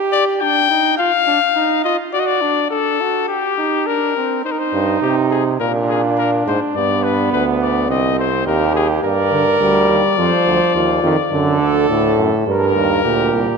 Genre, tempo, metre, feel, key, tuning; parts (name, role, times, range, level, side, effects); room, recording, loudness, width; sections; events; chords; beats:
classical, imitative canzona for brass ensemble; 104 BPM; 4/4; straight; C minor; A4 = 440 Hz
clear flugelhorn; second line; 0.0-13.6 s; B3 to C5; -20 LUFS; right 5 dB
clear trumpet; melody; 0.1-13.6 s; G4 to G5; -18 LUFS; left 9 dB
brilliant bass trombone; bass; 4.7-13.5 s; C2 to C3; -19 LUFS; right 2 dB
warm trombone; accompaniment; 9.3-13.6 s; G2 to G3; -17 LUFS; right 2 dB
wet concert hall reverb, RT60 2.5 s; -14 LUFS; side -5 dB against mid
0.0-4.4 A section; 4.4-13.6 B section
0.0 G5; 1.0 N.C.; 2.1 D; 3.3 Gm; 4.4 Cm; 5.6 Bb; 6.7 G; 7.9 Cm; 9.0 Gm; 10.2 F5; 11.3 D; 12.5 Gm
0.40 0.98 1.55 | 2.13 2.71 3.28 3.86 | 4.44 5.02 5.59 6.17 | 6.75 7.32 7.89 8.46 | 9.03 9.61 10.18 10.75 | 11.32 11.90 12.47 13.05